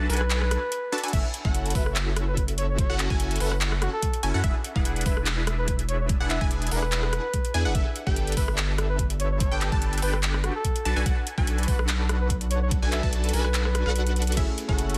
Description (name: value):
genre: future bass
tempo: 145 BPM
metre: 4/4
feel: swing 54% on 16ths, half-time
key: F# minor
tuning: A4 = 440 Hz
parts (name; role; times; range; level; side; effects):
- unison pluck; arpeggios; 0.0-15.0 s; E5 to A5; -38 LUFS; equal; sidechain pumping, tape echo
- supersaw stab; riff; 0.0-15.0 s; C#4 to A5; -34 LUFS; equal; phaser, vintage 12-bit sampler grit, sidechain pumping
- saturated sub bass; bass; 0.0-15.0 s; E1 to F#2; -29 LUFS; equal; sidechain pumping
- trumpet with bucket mute; melody; 0.1-14.2 s; F#4 to E5; -35 LUFS; equal; sidechain pumping
- dubstep drum kit; drums; 0.1-15.0 s; crash cymbal, handclaps, hi-hat, rim click; -33 LUFS; equal; none
- electronic kick drum; drums; 1.1-14.8 s; none; -28 LUFS; equal; none
- felt-muted upright piano; accompaniment; 14.4-15.0 s; A3 to G#4; -34 LUFS; equal; sidechain pumping
room: digital ambience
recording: dense, heavily limited modern master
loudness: -25 LUFS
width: mono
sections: 0.0-1.1 A section; 1.1-15.0 A section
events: drop 0.0-1.1, 1.1-15.0; break 0.7-1.1; drum fill 0.9, 14.2; kick drops out 13.5-14.4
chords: 0.0 Bm7; 1.1 F#m7; 4.4 E7; 7.8 G69; 10.9 Bm7; 14.4 F#m7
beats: 0.30 0.72 | 1.13 1.54 1.96 2.37 | 2.79 3.20 3.61 4.03 | 4.44 4.85 5.27 5.68 | 6.09 6.51 6.92 7.34 | 7.75 8.16 8.58 8.99 | 9.41 9.82 10.23 10.65 | 11.06 11.47 11.89 12.30 | 12.72 13.13 13.54 13.96 | 14.37 14.79